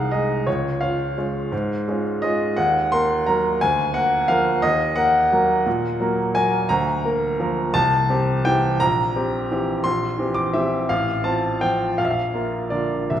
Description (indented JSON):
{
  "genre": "classical, piano waltz",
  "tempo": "151-184 BPM",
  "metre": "3/4",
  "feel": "rubato",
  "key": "unclear",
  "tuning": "A4 = 440 Hz",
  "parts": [
    { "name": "clear baby grand piano", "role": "solo", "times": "0.0-13.2 s", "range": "A1 to D6", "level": "-18 LUFS", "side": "equal", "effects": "none" }
  ],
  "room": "wet scoring stage reverb, RT60 2.1 s",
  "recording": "recorded in a church or concert hall",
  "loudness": "-18 LUFS",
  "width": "side -10 dB against mid",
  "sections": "0.0-13.2 A section",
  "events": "none",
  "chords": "0.5 Db; 2.6 Ebm; 3.6 Bb7/D; 4.6 Ebm; 6.7 Bb/D; 7.7 C; 8.8 C7/Bb; 10.9 F/A; 12.0 Bb",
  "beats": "0.11 | 0.47 0.82 1.18 | 1.52 1.87 2.23 | 2.57 2.92 3.27 | 3.61 3.94 4.29 | 4.63 4.97 5.32 | 5.66 6.00 6.35 | 6.70 7.05 7.40 | 7.75 8.10 8.46 | 8.81 9.16 9.51 | 9.85 10.19 10.55 | 10.91 11.26 11.63 | 11.99 12.34 12.72 | 13.11"
}